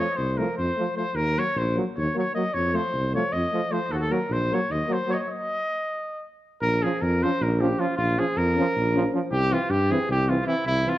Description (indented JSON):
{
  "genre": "balkan folk, Balkan brass band",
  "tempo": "309 BPM (eighths)",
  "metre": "7/8",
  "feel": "straight",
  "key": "Eb dorian sharp4, Bb dorian sharp4 from 6.6 s",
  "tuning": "A4 = 439 Hz",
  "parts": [
    { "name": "warm trumpet", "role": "melody", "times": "0.0-11.0 s", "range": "E4 to Eb5", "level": "-26 LUFS", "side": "equal", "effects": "none" },
    { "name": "clear trombone", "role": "accompaniment", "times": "0.0-10.9 s", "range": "E3 to Gb3", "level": "-30 LUFS", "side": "right 3 dB", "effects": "none" },
    { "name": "mellow euphonium", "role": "accompaniment", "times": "0.0-10.9 s", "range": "A3 to Db4", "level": "-31 LUFS", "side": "left 3 dB", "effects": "none" },
    { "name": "mellow tuba", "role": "bass", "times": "0.2-10.9 s", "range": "Bb1 to G2", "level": "-26 LUFS", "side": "equal", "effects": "none" }
  ],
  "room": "moderate scoring stage reverb, RT60 1.6 s",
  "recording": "worn, warbling old tape, cassette tape, warbly pitch drift",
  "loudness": "-22 LUFS",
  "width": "side -14 dB against mid",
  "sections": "0.0-6.6 A section; 6.6-11.0 B section",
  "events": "speeding up 0.0-11.0; stop 5.3-6.6",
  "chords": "0.0 F; 1.1 Ebm; 2.5 F; 3.9 Ebm; 5.3 N.C.; 6.6 Bbm; 9.3 C"
}